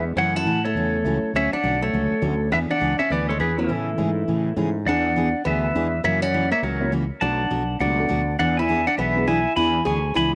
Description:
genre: country, western swing.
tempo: 204 BPM.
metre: 4/4.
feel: swing 62% on 8ths.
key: unclear.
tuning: A4 = 440 Hz.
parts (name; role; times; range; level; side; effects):
pedal steel guitar; melody; 0.0-10.3 s; E4 to C#6; -26 LUFS; equal; none.
archtop guitar, miked and amplified; second line; 0.0-10.3 s; E3 to G#4; -29 LUFS; equal; none.
dark upright piano; accompaniment; 0.0-9.3 s; E3 to A4; -32 LUFS; equal; none.
fretless electric bass; bass; 0.0-10.3 s; B1 to A2; -28 LUFS; equal; none.
picked steel-string acoustic guitar; accompaniment; 0.2-10.3 s; B2 to G#4; -30 LUFS; equal; none.
room: light reverb.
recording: none.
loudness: -22 LUFS.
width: mono.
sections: 0.0-4.9 A section; 4.9-10.3 B section.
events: none.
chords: 0.2 F#m7; 1.3 Dmaj7; 2.5 E7; 3.7 Amaj7; 4.9 E7; 6.0 F#7; 7.2 Bm7; 8.4 E7.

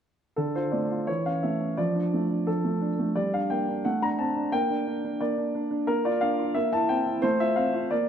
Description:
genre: classical-period piano sonatina.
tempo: 88 BPM.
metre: 2/4.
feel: rubato.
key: D minor.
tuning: A4 = 441 Hz.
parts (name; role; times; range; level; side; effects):
warm baby grand piano; solo; 0.4-8.1 s; D3 to Bb5; -24 LUFS; equal; none.
room: moderate recital hall reverb, RT60 1.6 s.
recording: dark, warm production.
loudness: -24 LUFS.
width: side -8 dB against mid.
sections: 0.4-8.1 A section.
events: none.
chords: 0.4 Dm; 1.1 A/E; 1.8 Dm/F; 3.2 Gm; 3.8 D5/A; 4.5 Gm/Bb; 5.9 Bb; 6.6 C7/Bb; 7.2 F/A.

